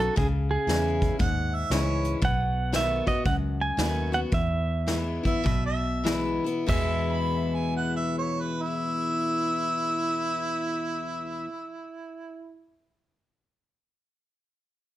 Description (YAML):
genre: honky-tonk and classic country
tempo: 94-117 BPM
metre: 4/4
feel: swing 65% on 8ths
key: E major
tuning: A4 = 440 Hz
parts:
  - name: pedal steel guitar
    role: melody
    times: 0.0-11.4 s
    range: G#4 to G#5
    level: -30 LUFS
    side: right 3 dB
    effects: none
  - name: picked steel-string acoustic guitar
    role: accompaniment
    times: 0.0-11.5 s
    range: E2 to F#4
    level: -30 LUFS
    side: left 3 dB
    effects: none
  - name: vintage muted fingered electric bass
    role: bass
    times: 0.0-11.4 s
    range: B1 to E2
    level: -29 LUFS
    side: equal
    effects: none
  - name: soft brush drum kit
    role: drums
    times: 0.0-6.9 s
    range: crash cymbal, hi-hat, kick drum, snare drum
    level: -29 LUFS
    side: equal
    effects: none
  - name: mellow harmonica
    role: second line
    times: 1.2-2.1, 5.3-12.6 s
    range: E4 to B5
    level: -30 LUFS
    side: right 2 dB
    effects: slapback echo
room: light reverb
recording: close, detailed microphones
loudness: -24 LUFS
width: side -14 dB against mid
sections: 0.0-6.7 A section; 6.7-11.8 B section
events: slowing down 2.2-6.7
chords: 0.2 C#m; 2.2 B7; 4.3 E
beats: | 0.17 0.68 1.19 1.70 | 2.22 2.73 3.25 3.78 | 4.32 4.88 5.46 6.06 | 6.68 7.32 7.96 8.61 | 9.25 9.89 10.53 11.17